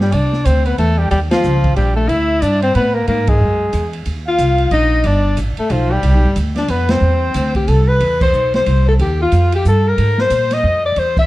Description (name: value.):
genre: jazz, small-group swing and bop.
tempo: 182 BPM.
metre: 3/4.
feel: swing 62% on 8ths.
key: C major.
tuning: A4 = 440 Hz.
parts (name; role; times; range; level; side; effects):
breathy alto saxophone; melody; 0.0-11.3 s; F3 to E5; -17 LUFS; left 3 dB; none.
clear trumpet; second line; 0.0-11.3 s; F4 to F5; -22 LUFS; right 3 dB; none.
upright bass; bass; 0.0-11.3 s; G1 to Bb2; -15 LUFS; right 1 dB; none.
open jazz drum kit; drums; 0.0-11.2 s; crash cymbal, hi-hat, kick drum, ride cymbal, snare drum; -24 LUFS; right 1 dB; none.
room: light reverb.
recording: dark, warm production.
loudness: -12 LUFS.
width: side -17 dB against mid.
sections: 0.1-8.0 A section; 8.0-11.3 B section.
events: band accent 1.3, 3.2, 6.9, 8.2.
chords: 0.1 Cadd9; 1.1 Ebsus2; 2.1 Dsus24; 3.1 E; 4.1 Ebsus2; 5.0 G; 6.0 Cmaj9; 8.0 Cmaj7; 9.0 Ebadd9; 10.0 Ab69.